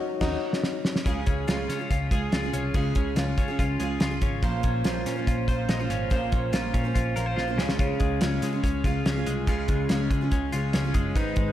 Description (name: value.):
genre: jangly indie pop.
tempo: 142 BPM.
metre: 4/4.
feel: straight.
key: Db major.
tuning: A4 = 440 Hz.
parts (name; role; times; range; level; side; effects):
reed electric piano; accompaniment; 0.0-1.1, 7.8-11.5 s; Eb4 to Db5; -33 LUFS; left 5 dB; fast tremolo.
picked steel-string acoustic guitar; accompaniment; 0.2-11.5 s; Ab2 to C5; -31 LUFS; right 6 dB; none.
vintage muted picked electric bass; bass; 0.2-11.5 s; Gb1 to Db3; -31 LUFS; equal; none.
cloth-damped thuddy drum kit; drums; 0.2-11.5 s; crash cymbal, hi-hat, kick drum, snare drum; -27 LUFS; equal; none.
twelve-string electric guitar; arpeggios; 1.1-11.5 s; Ab2 to C5; -29 LUFS; left 4 dB; analog delay.
room: moderate lush hall reverb, RT60 1.8 s, small room ambience.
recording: dreamy mix soaked in reverb.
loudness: -23 LUFS.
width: side -12 dB against mid.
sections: 0.0-1.1 A section; 1.1-11.5 B section.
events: band accent 0.0-1.1; drum fill 0.2-1.1, 7.4-7.8.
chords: 0.0 Ebm7; 1.1 Db; 4.4 Bbmadd9; 7.6 Db.